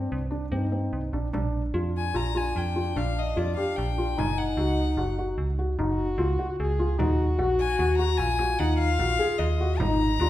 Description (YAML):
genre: contemporary instrumental, chamber music in an uneven meter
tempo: 149 BPM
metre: 7/4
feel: straight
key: Bb mixolydian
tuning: A4 = 440 Hz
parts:
  - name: warm French horn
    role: second line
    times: 0.0-10.3 s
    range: D4 to Ab4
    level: -31 LUFS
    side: left 2 dB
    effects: none
  - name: felt-muted upright piano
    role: arpeggios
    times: 0.0-10.3 s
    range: C4 to Ab4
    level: -29 LUFS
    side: left 1 dB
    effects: none
  - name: metallic FM bass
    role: bass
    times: 0.0-10.3 s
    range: Gb1 to G2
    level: -27 LUFS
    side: right 1 dB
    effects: none
  - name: frame drum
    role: percussion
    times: 0.1-10.0 s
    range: none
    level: -35 LUFS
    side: right 3 dB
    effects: none
  - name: rich violin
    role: melody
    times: 2.0-10.3 s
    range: D5 to Bb5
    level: -29 LUFS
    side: left 5 dB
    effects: none
room: wet recital hall reverb, RT60 1.4 s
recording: recorded in a church or concert hall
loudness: -24 LUFS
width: side -13 dB against mid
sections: 0.0-1.3 A section; 1.3-10.3 B section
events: none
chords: 0.0 Cm; 1.3 Bb; 4.2 Gb5; 7.0 Ebm